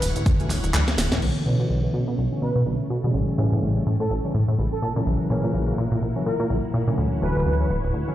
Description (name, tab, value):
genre	filtered disco house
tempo	125 BPM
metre	4/4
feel	swing 57% on 16ths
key	B minor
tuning	A4 = 440 Hz
part	analog synth brass	melody	0.0-7.7 s	A4 to B4	-31 LUFS	right 1 dB	chorus, sidechain pumping, low-pass filter, ping-pong delay
part	string machine, full ensemble	sustained chords	0.0-8.1 s	C#4 to G5	-34 LUFS	left 1 dB	ensemble chorus, sidechain pumping, low-pass filter
part	plucky analog bass	bass	0.0-8.0 s	D1 to B2	-23 LUFS	equal	tube saturation, sidechain pumping, low-pass filter
part	house drum kit	drums	0.0-1.3 s	crash cymbal, handclaps, hi-hat, shaker, snare drum	-27 LUFS	equal	sidechain pumping on hats, sidechain pumping on perc, sidechain pumping on cymbals
part	tambourine	percussion	0.0-1.2 s	none	-41 LUFS	right 7 dB	none
part	overdriven tine electric piano	accompaniment	0.4-8.1 s	C#3 to E4	-27 LUFS	left 1 dB	phaser, sidechain pumping, low-pass filter
room	light reverb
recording	played on a big sound system in a bare room, large studio reverb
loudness	-20 LUFS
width	side -13 dB against mid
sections	0.0-1.2 A section; 1.2-8.1 B section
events	drum fill 0.9-1.2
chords	0.0 Dmaj9; 1.2 Bm11; 3.1 A7; 4.8 F#7/A#; 7.0 Dmaj9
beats	0.26 0.74 | 1.22 1.70 2.18 2.66 | 3.14 3.62 4.10 4.58 | 5.06 5.54 6.02 6.50 | 6.98 7.46 7.94